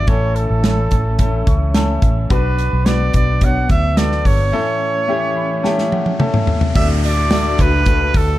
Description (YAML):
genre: piano-driven pop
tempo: 108 BPM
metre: 4/4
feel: straight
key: D major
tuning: A4 = 445 Hz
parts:
  - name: clear trumpet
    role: melody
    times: 0.0-8.4 s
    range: A4 to F#5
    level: -21 LUFS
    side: right 2 dB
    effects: none
  - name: clear baby grand piano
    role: accompaniment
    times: 0.0-8.4 s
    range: A2 to C#6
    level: -21 LUFS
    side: left 3 dB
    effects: none
  - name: dark studio string section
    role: sustained chords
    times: 0.0-8.4 s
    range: E3 to F#4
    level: -28 LUFS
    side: equal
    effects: none
  - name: vintage muted fingered electric bass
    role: bass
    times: 0.0-8.4 s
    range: G1 to D2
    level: -18 LUFS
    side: equal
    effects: none
  - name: natural country drum kit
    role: drums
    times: 0.1-8.3 s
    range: crash cymbal, hi-hat, kick drum, snare drum, toms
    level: -17 LUFS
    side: equal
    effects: none
  - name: riser and downlifter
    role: sound effects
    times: 5.6-8.4 s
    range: none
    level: -30 LUFS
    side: left 1 dB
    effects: none
room: light reverb, small room reverb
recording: dark, warm production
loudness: -14 LUFS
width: side -15 dB against mid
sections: 0.0-6.8 A section; 6.8-8.4 B section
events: grand piano fill 1.2-2.3, 5.1-6.8; break 4.5-6.8; riser 5.6-6.8; drum fill 5.6-6.8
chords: 0.1 A; 2.3 Bm; 4.5 A; 6.8 D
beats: | 0.08 0.64 1.20 1.75 | 2.31 2.87 3.42 3.98 | 4.54 5.09 5.65 6.20 | 6.76 7.32 7.87